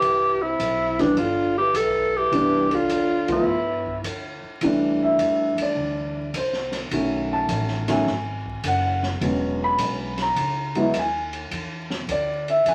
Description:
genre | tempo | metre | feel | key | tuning
jazz, small-group swing and bop | 104 BPM | 4/4 | swing 68% on 8ths | C major | A4 = 439 Hz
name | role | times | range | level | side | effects
breathy alto saxophone | melody | 0.0-4.0 s | D4 to A4 | -24 LUFS | equal | none
trombone with cup mute | second line | 0.0-4.0 s | B2 to E3 | -30 LUFS | equal | none
upright bass | bass | 0.0-12.7 s | E1 to G2 | -35 LUFS | equal | none
open jazz drum kit | drums | 0.0-12.7 s | hi-hat, kick drum, ride cymbal, snare drum | -35 LUFS | equal | none
dark grand piano | accompaniment | 1.0-12.7 s | D#3 to B5 | -24 LUFS | equal | none
room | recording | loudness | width
wet studio reverb, RT60 0.5 s | vinyl crackle | -23 LUFS | mono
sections
0.0-4.6 A section; 4.6-12.7 B section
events
band accent 3.2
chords
0.0 Cmaj9; 3.5 G; 4.6 C6; 6.9 B9; 9.2 E69; 11.5 E7(no3)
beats
| 0.02 0.59 1.17 1.75 | 2.32 2.90 3.47 4.05 | 4.62 5.20 5.77 6.35 | 6.92 7.50 8.07 8.64 | 9.22 9.79 10.37 10.94 | 11.51 12.09 12.66

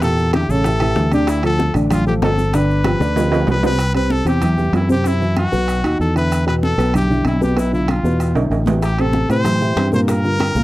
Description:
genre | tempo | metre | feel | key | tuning
latin, salsa | 191 BPM | 4/4 | straight | C major | A4 = 440 Hz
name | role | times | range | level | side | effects
bright trumpet | melody | 0.0-10.6 s | E4 to C5 | -22 LUFS | left 1 dB | none
dark baby grand piano | accompaniment | 0.0-10.6 s | Bb2 to D5 | -20 LUFS | equal | none
fingered electric bass | bass | 0.0-10.6 s | G1 to A2 | -18 LUFS | equal | none
bongos | percussion | 0.0-3.7, 8.8-10.6 s | none | -26 LUFS | left 5 dB | none
congas | percussion | 0.0-10.6 s | none | -24 LUFS | equal | none
maracas | percussion | 0.0-10.6 s | none | -42 LUFS | left 9 dB | none
timbales | percussion | 0.0-10.6 s | none | -26 LUFS | right 5 dB | none
room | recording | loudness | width
little or no reverb | dry, close 1970s-style studio recording | -14 LUFS | side -17 dB against mid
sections
0.0-3.8 A section; 3.8-10.6 B section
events
drum fill 2.8-3.8, 8.4-8.8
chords
0.0 Em7b5; 0.6 A5; 1.3 Dm; 2.5 G7; 3.8 C; 5.0 Cmaj7#11; 5.7 B; 6.3 Em7; 7.6 Bdim; 8.2 E5; 8.8 Am7; 10.1 Gm7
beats
| 0.02 0.33 0.65 0.96 | 1.28 1.59 1.91 2.22 | 2.53 2.85 3.16 3.48 | 3.79 4.11 4.42 4.74 | 5.05 5.37 5.68 5.99 | 6.31 6.62 6.94 7.25 | 7.57 7.88 8.20 8.51 | 8.83 9.14 9.45 9.77 | 10.08 10.40

